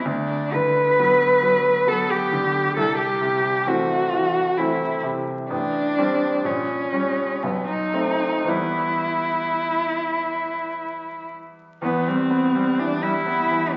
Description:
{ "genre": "classical, romantic duo for cello and grand piano", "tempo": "51-69 BPM", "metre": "3/4", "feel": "rubato", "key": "E minor", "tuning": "A4 = 440 Hz", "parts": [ { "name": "warm cello", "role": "melody", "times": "0.0-13.8 s", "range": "B3 to B4", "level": "-23 LUFS", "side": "equal", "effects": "none" }, { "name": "bright grand piano", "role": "accompaniment", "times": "0.0-13.8 s", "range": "A1 to C#4", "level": "-28 LUFS", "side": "equal", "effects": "none" } ], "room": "wet recital hall reverb, RT60 1.3 s", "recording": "very old 78 rpm record, vinyl crackle, nothing above 7.7 kHz", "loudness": "-22 LUFS", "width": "mono", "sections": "0.0-11.8 A section; 11.8-13.8 A section", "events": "none", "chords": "0.1 Bm/D; 2.8 Am/C; 5.5 Am7; 6.5 A#m6; 7.4 B7b9; 8.5 Em" }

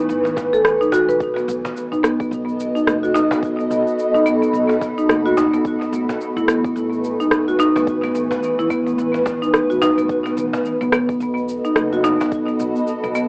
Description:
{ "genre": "organic downtempo", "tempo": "108 BPM", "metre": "4/4", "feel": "swing 59% on 16ths", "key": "unclear", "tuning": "A4 = 438 Hz", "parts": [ { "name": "granular cloud pad", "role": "sustained chords", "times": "0.0-13.3 s", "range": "E3 to B5", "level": "-21 LUFS", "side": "equal", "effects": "built-in reverb, sidechain pumping" }, { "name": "marimba with medium mallets", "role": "arpeggios", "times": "0.0-13.3 s", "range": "B3 to B4", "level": "-18 LUFS", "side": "equal", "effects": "tape echo" }, { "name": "upright bass", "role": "bass", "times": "0.0-13.3 s", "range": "F#1 to E2", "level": "-33 LUFS", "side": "equal", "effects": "none" }, { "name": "electronic shaker and rim click", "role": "drums", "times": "0.1-13.3 s", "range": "none", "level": "-19 LUFS", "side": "equal", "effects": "overdrive, cassette tape" }, { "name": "cajon", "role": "percussion", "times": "0.3-12.3 s", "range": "none", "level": "-30 LUFS", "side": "equal", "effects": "none" }, { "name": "electronic kick drum", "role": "drums", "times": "0.4-12.4 s", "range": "none", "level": "-31 LUFS", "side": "equal", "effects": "overdrive, cassette tape" } ], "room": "wet booth ambience, RT60 0.2 s", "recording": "home recording on cassette, AM radio sound", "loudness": "-16 LUFS", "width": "side -38 dB against mid", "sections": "0.0-13.3 A section", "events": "none", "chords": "0.0 A5; 1.2 B7; 5.6 A5; 10.1 B7" }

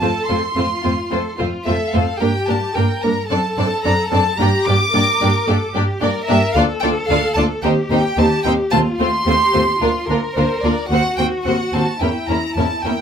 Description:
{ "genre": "quick classical-period movement for string orchestra", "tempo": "110 BPM", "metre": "4/4", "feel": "straight", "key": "Bb major from 6.5 s", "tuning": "A4 = 439 Hz", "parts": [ { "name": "warm chamber violin section", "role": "melody", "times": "0.0-13.0 s", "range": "C5 to D6", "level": "-20 LUFS", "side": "equal", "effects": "none" }, { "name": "rich studio violin section", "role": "second line", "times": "0.0-12.9 s", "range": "Eb4 to D5", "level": "-23 LUFS", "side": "equal", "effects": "none" }, { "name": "warm studio viola section", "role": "accompaniment", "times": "0.0-12.9 s", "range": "A3 to D4", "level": "-22 LUFS", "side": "equal", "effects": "none" }, { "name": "clear chamber double bass section", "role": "bass", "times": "0.0-12.9 s", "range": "D2 to G2", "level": "-21 LUFS", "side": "right 1 dB", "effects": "none" }, { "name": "dark studio cello section", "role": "bass", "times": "0.0-13.0 s", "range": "E4 to Bb4", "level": "-23 LUFS", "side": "left 2 dB", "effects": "none" } ], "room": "light reverb", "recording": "close, detailed microphones", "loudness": "-15 LUFS", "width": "side -8 dB against mid", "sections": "0.0-13.0 A section", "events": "none", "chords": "0.0 F; 2.2 Gm; 3.3 D7/F#; 4.4 Gm; 6.5 Bb/D; 7.6 Cm7/Eb; 8.7 F7/Eb; 9.8 Bb/D; 10.9 Cm7b5/Eb; 12.0 Edim7" }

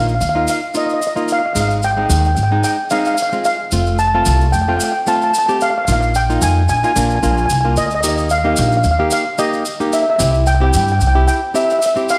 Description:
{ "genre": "calypso", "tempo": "111 BPM", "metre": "4/4", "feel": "swing 54% on 16ths", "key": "Eb major", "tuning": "A4 = 438 Hz", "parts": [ { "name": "steel pan", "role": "melody", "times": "0.0-12.2 s", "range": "Eb5 to A5", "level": "-19 LUFS", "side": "equal", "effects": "none" }, { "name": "flamenco guitar", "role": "accompaniment", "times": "0.0-12.2 s", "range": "Ab3 to G4", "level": "-23 LUFS", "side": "equal", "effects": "none" }, { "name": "upright bass", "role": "bass", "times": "0.0-11.3 s", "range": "F1 to G2", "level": "-19 LUFS", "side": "equal", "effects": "none" }, { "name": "tube shaker", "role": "percussion", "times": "0.1-12.2 s", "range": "none", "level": "-28 LUFS", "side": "equal", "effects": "none" } ], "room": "wet echo chamber reverb, RT60 2.2 s", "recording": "none", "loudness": "-16 LUFS", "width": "mono", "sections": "0.0-12.2 A section", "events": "none", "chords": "0.0 Ebsus2; 1.6 Ab6; 3.7 F; 5.9 Bbsus4; 7.0 Bb; 8.0 Eb; 10.2 C" }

